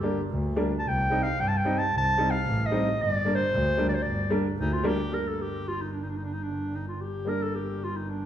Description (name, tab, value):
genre	klezmer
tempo	112 BPM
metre	2/4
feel	straight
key	G minor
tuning	A4 = 440 Hz
part	warm clarinet	melody	0.0-8.3 s	D4 to A5	-28 LUFS	equal	none
part	warm upright piano	accompaniment	0.0-8.3 s	G3 to Eb4	-30 LUFS	equal	none
part	warm double bass	bass	0.0-8.3 s	G1 to G2	-30 LUFS	equal	none
room	moderate recital hall reverb, RT60 1.7 s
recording	small room ambience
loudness	-25 LUFS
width	side -10 dB against mid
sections	0.0-5.1 A section; 5.1-8.3 B section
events	clarinet solo 0.0-5.1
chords	0.0 Gm; 0.8 Cm; 3.0 Gm